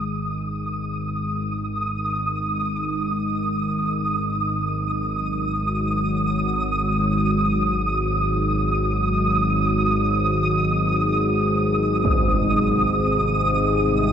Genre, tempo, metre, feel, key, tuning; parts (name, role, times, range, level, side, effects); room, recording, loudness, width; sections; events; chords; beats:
dark ambient drone; free time; A4 = 438 Hz
sweeping resonant pad; sustained chords; 0.0-14.1 s; G#2 to D4; -25 LUFS; left 1 dB; chorus, shimmer reverb
analog drone; drone; 0.0-14.1 s; G#1 to G#2; -24 LUFS; left 1 dB; chorus
flickering grainy texture; texture; 0.0-14.1 s; D#6; -24 LUFS; right 2 dB; built-in reverb, shimmer reverb
impact; percussion; 12.0-12.3 s; -25 LUFS; equal; low-pass filter on sfx
wet cathedral reverb, RT60 5.3 s; -20 LUFS; side -8 dB against mid
0.0-14.1 A section
fade-in on synth drone 0.0-14.1; fade-in on analog synth pad 0.0-14.1; fade-in on impacts and reversed cymbals 0.0-14.1
0.0 G#5; 12.0 Cm
free time